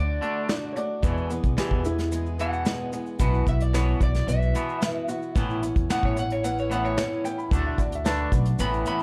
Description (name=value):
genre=folk rock and heartland rock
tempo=111 BPM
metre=4/4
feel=straight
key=E mixolydian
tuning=A4 = 441 Hz
part: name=electric guitar through a small old amp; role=melody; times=0.0-9.0 s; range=C#5 to B5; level=-33 LUFS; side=equal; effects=subtle chorus
part: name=picked swing-style acoustic guitar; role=accompaniment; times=0.0-9.0 s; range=E2 to G#4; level=-33 LUFS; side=equal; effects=none
part: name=twangy electric guitar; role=riff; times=0.0-9.0 s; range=E2 to D4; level=-35 LUFS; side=equal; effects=none
part: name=upright bass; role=bass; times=0.0-8.8 s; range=A1 to E2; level=-29 LUFS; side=equal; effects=none
part: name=soft brush drum kit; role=drums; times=0.2-9.0 s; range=hi-hat, kick drum, snare drum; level=-30 LUFS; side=equal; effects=none
part: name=warm upright piano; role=second line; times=0.7-2.2, 7.2-8.5 s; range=E4 to B5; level=-35 LUFS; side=equal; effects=none
part: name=tube shaker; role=percussion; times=1.0-9.0 s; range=none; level=-47 LUFS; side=equal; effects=none
room=small room ambience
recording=dark, warm production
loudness=-25 LUFS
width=mono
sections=0.0-9.0 A section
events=clean electric guitar solo 0.0-9.0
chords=0.0 D; 1.0 E; 3.2 Bsus4; 5.4 Aadd9; 7.5 D